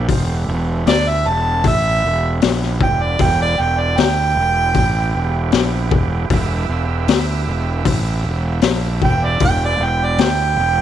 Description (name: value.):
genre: blues rock power trio and southern rock.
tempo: 77 BPM.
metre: 4/4.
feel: straight.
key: E minor.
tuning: A4 = 442 Hz.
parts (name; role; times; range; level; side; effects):
overdriven tonewheel organ; sustained chords; 0.0-10.8 s; G3 to E5; -28 LUFS; right 12 dB; slow rotary speaker.
fuzz fingered electric bass; bass; 0.0-10.8 s; E1 to D2; -19 LUFS; right 1 dB; overdrive.
raw garage drum kit; drums; 0.1-10.4 s; hi-hat, kick drum, snare drum; -18 LUFS; left 4 dB; none.
warm harmonica; melody; 0.9-10.8 s; D5 to A5; -18 LUFS; right 3 dB; overdrive, slapback echo.
room: little or no reverb.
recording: 1960s-style stereo.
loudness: -14 LUFS.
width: side -10 dB against mid.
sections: 0.0-10.8 A section.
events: harmonica solo 0.0-10.8.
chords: 0.0 Em.